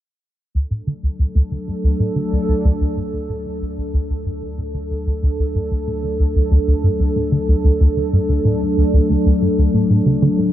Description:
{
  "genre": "ambient, sequencer-driven space music",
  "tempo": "93 BPM",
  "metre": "4/4",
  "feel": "straight",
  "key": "D major",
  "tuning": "A4 = 440 Hz",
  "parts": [
    { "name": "sweeping resonant pad", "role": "sustained chords", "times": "0.5-10.5 s", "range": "F#3 to A4", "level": "-20 LUFS", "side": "equal", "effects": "chorus" },
    { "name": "plucky analog bass", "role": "riff", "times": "0.5-10.5 s", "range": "D2 to D3", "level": "-16 LUFS", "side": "equal", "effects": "analog chorus, ping-pong delay" },
    { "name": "warm sub bass", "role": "bass", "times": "0.5-10.5 s", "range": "D2", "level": "-30 LUFS", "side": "equal", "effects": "none" }
  ],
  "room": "light reverb",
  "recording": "none",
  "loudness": "-16 LUFS",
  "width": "side -12 dB against mid",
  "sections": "0.5-10.5 A section",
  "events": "filter sweep on analog synth bass 0.5-10.5",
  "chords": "0.5 D"
}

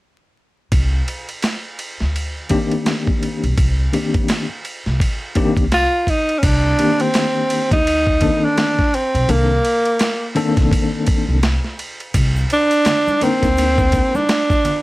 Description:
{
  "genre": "hip hop, jazz-hop",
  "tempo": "84 BPM",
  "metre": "4/4",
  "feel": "swing 59% on 16ths",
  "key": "C dorian",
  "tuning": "A4 = 440 Hz",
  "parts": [
    { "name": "upright bass", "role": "bass", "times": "0.7-14.0 s", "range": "B1 to D2", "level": "-19 LUFS", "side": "equal", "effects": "none" },
    { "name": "dusty soul sampler-style drum kit", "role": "drums", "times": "0.7-14.8 s", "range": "crash cymbal, hi-hat, kick drum, ride cymbal, snare drum", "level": "-20 LUFS", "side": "equal", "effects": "overdrive" },
    { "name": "tine electric piano", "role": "accompaniment", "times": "2.5-14.2 s", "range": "Eb3 to Bb4", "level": "-20 LUFS", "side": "left 3 dB", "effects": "overdrive, fast tremolo" },
    { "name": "breathy tenor saxophone", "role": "melody", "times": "5.7-14.8 s", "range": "Bb3 to F4", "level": "-16 LUFS", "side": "right 1 dB", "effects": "none" },
    { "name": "egg shaker and congas", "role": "percussion", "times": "12.1-14.8 s", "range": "none", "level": "-29 LUFS", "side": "right 2 dB", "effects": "none" }
  ],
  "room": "light reverb",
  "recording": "vinyl crackle",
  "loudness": "-15 LUFS",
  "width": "side -18 dB against mid",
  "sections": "0.7-6.4 A section; 6.4-14.8 B section",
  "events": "none",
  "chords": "0.7 Cm9"
}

